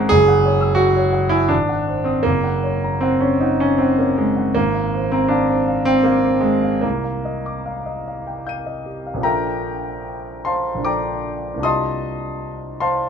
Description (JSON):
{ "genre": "classical, impressionist solo piano", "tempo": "72-88 BPM", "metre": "3/4", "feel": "rubato", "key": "unclear", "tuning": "A4 = 443 Hz", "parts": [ { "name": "warm grand piano", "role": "solo", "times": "0.0-13.1 s", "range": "Gb1 to Eb7", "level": "-17 LUFS", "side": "equal", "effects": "none" } ], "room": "light reverb", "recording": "minimal, uncompressed stereo recording", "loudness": "-17 LUFS", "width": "side -7 dB against mid", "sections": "0.0-9.3 A section; 9.3-13.1 B section", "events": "none", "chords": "0.1 Gbsus2; 1.5 Ab7; 2.3 Gbadd9; 4.6 Ab69; 6.8 Cm11; 9.3 Bbmaj7; 11.6 Cm11", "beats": "| 0.11 0.79 1.52 | 2.27 3.04 3.82 | 4.58 5.32 6.05 | 6.83 7.67 8.47 | 9.26 10.06 10.86 | 11.64 12.42" }